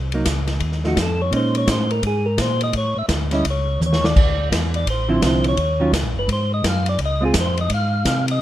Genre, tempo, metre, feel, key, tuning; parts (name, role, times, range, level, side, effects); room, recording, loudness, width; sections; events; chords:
soul jazz organ trio; 170 BPM; 4/4; swing 63% on 8ths; A4 = 439 Hz
mellow tonewheel organ; bass; 0.0-8.4 s; Gb1 to C3; -22 LUFS; equal; chorus vibrato, slow rotary speaker
hollow-body jazz guitar; accompaniment; 0.1-7.3 s; D3 to F4; -22 LUFS; right 2 dB
swinging big-band drum kit; drums; 0.1-8.3 s; crash cymbal, hi-hat, kick drum, ride cymbal, snare drum, toms; -22 LUFS; equal
percussive tonewheel organ; melody; 0.9-8.4 s; Gb4 to F5; -24 LUFS; equal; slow rotary speaker
small room ambience; rough home demo mix; -17 LUFS; side -13 dB against mid
0.0-8.4 A section
tonewheel organ solo 0.0-8.4; drum fill 3.8-4.2
0.0 Cm7b5; 0.6 Ebm9b5; 1.3 Bbm7; 2.7 A; 4.2 Dm9; 5.6 Ebm9; 6.3 Ab7#11; 7.0 Dbmaj7